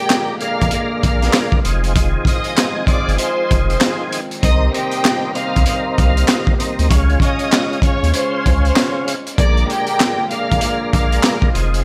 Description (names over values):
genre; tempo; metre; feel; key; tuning
hip hop, boom-bap hip-hop; 97 BPM; 4/4; swing 61% on 16ths; unclear; A4 = 440 Hz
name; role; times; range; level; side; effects
warm studio violin section; melody; 0.0-11.4 s; G4 to F6; -25 LUFS; equal; high-pass filter, low-pass filter
tonewheel organ; accompaniment; 0.0-11.8 s; Bb2 to Bb4; -24 LUFS; equal; chorus vibrato, slow rotary speaker, cassette tape, high-pass filter, low-pass filter
warm analog pad; sustained chords; 0.0-11.8 s; D3 to G4; -31 LUFS; equal; chorus, high-pass filter, low-pass filter
crunchy breakbeat drum kit; drums; 0.1-11.8 s; handclaps, hi-hat, kick drum, snare drum; -19 LUFS; equal; none
finger snap; percussion; 0.1-11.4 s; none; -28 LUFS; equal; none
warm sub bass; bass; 0.6-11.8 s; F1 to Eb2; -19 LUFS; equal; none
room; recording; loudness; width
light reverb; none; -16 LUFS; mono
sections
0.0-11.8 A section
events
none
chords
0.0 Bb7; 1.6 Fm7; 4.4 Cm7; 6.9 Db; 9.4 Bb7